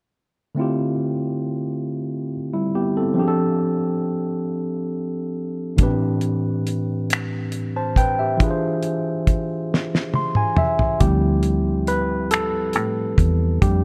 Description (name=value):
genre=slow six-eight R&B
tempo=46 BPM (dotted quarters)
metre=6/8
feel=straight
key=unclear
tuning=A4 = 439 Hz
part: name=overdriven tine electric piano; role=accompaniment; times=0.5-13.8 s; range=A2 to C6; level=-24 LUFS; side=equal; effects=none
part: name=damped 70s drum kit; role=drums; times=5.8-13.8 s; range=finger snaps, hi-hat, kick drum, snare drum, toms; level=-22 LUFS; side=equal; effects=none
part: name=vintage muted fingered electric bass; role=bass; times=11.0-13.8 s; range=D2 to A2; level=-24 LUFS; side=equal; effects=none
room=light reverb, small room ambience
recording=none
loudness=-22 LUFS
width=mono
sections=0.6-11.0 A section; 11.0-13.8 B section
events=drum fill 9.7-11.0; tine electric piano fill 9.7-11.0; tine electric piano solo 11.0-13.8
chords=0.6 Dm11; 3.2 F69; 5.8 Am11; 8.4 E7b9b13; 11.0 Dm11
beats=| 0.57 1.88 | 3.18 4.49 | 5.79 7.10 | 8.40 9.71 | 11.01 12.31 | 13.62